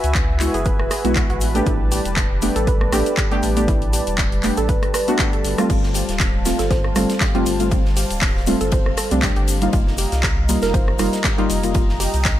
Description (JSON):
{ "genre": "deep house", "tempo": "119 BPM", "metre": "4/4", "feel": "swing 55% on 16ths", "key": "unclear", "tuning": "A4 = 440 Hz", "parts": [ { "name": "warm analog pad", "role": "sustained chords", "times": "0.0-12.4 s", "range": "G3 to Bb5", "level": "-27 LUFS", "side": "left 1 dB", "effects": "chorus, sidechain pumping" }, { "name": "warm sub bass", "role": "bass", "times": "0.0-12.4 s", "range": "D1 to C#2", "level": "-23 LUFS", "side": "equal", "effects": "sidechain pumping" }, { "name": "house drum kit", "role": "drums", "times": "0.0-12.4 s", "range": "crash cymbal, handclaps, hi-hat, rim click", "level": "-25 LUFS", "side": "left 1 dB", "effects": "none" }, { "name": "tube shaker", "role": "percussion", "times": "0.0-12.4 s", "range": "none", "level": "-32 LUFS", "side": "left 4 dB", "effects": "none" }, { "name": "electronic kick drum", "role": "drums", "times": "0.2-12.4 s", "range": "none", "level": "-21 LUFS", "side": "equal", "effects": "none" }, { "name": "deep mellow chord stab", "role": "stabs", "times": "0.4-11.9 s", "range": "G3 to G4", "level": "-22 LUFS", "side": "equal", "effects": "chorus, digital delay" }, { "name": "warbly dusty pluck", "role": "arpeggios", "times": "0.5-12.1 s", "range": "E4 to C5", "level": "-27 LUFS", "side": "right 3 dB", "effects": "chorus, cassette tape, sidechain pumping, digital delay" }, { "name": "tight metal drum kit", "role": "drums", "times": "5.7-12.4 s", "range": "hi-hat, ride cymbal, snare drum", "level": "-33 LUFS", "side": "equal", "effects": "sidechain pumping on cymbals, high-pass filter on cymbals, sidechain pumping on hats, high-pass filter on hats, high-pass filter on snare, high-pass filter on room" } ], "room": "small room reverb", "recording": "none", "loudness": "-16 LUFS", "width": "side -12 dB against mid", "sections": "0.0-12.4 A section", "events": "none", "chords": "0.0 F#9sus4; 1.4 A9sus4; 5.7 G9sus4; 9.7 F9sus4", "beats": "0.15 0.66 1.16 | 1.67 2.17 2.67 3.18 | 3.68 4.19 4.69 5.19 | 5.70 6.20 6.71 7.21 | 7.71 8.22 8.72 9.23 | 9.73 10.24 10.74 11.24 | 11.75 12.25" }